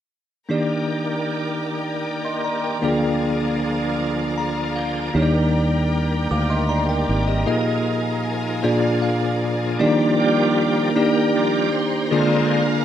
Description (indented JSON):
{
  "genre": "gospel",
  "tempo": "52 BPM (dotted quarters)",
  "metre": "6/8",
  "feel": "straight",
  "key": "Eb major",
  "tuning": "A4 = 444 Hz",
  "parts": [
    { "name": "bell-like tine electric piano", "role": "accompaniment", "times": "0.5-12.8 s", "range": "Bb2 to D6", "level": "-20 LUFS", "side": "left 1 dB", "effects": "medium stereo tremolo" },
    { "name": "bright studio string section", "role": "sustained chords", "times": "0.5-12.8 s", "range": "Ab4 to Bb5", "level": "-30 LUFS", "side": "left 1 dB", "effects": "none" },
    { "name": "bright tonewheel organ", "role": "sustained chords", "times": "0.5-12.8 s", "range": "D2 to G5", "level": "-25 LUFS", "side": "right 3 dB", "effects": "slow rotary speaker, chorus vibrato" },
    { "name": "fingered electric bass", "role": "bass", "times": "5.1-7.4 s", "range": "Ab1 to Eb2", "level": "-21 LUFS", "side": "equal", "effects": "none" }
  ],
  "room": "moderate lush hall reverb, RT60 2.5 s",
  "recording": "rough home demo mix",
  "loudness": "-18 LUFS",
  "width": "side -10 dB against mid",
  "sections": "0.5-9.8 A section; 9.8-12.8 B section",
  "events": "tine electric piano fill 4.0-5.1, 8.6-9.8; tonewheel organ fill 4.0-5.1; tonewheel organ solo 9.8-12.8",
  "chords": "0.5 Ebmaj7; 2.8 Bb7/D; 5.1 Ebmaj7; 7.5 Bb7sus4; 8.6 Bb7; 9.8 Ebmaj7; 12.1 Bb7/D"
}